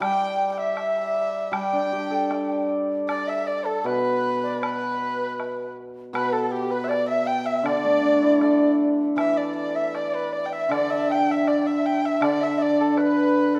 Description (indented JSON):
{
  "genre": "chinese traditional, Chinese chamber ensemble",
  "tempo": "79 BPM",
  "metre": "2/4",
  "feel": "rubato",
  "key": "unclear",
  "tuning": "A4 = 439 Hz",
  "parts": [
    { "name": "dark erhu", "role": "melody", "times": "0.0-13.6 s", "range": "G4 to G5", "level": "-28 LUFS", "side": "equal", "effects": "none" },
    { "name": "bright large dizi", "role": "second line", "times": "0.0-13.6 s", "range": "G4 to G5", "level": "-30 LUFS", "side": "equal", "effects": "none" },
    { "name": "hammered dulcimer", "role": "accompaniment", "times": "0.0-13.6 s", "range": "B2 to D5", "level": "-26 LUFS", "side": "equal", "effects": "none" },
    { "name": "woodblock", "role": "percussion", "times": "0.0-13.2 s", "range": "none", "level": "-36 LUFS", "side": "equal", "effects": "none" }
  ],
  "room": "wet recital hall reverb, RT60 1.8 s",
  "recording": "none",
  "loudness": "-23 LUFS",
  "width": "mono",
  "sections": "0.0-3.1 A section; 3.1-13.6 B section",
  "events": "none",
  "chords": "none"
}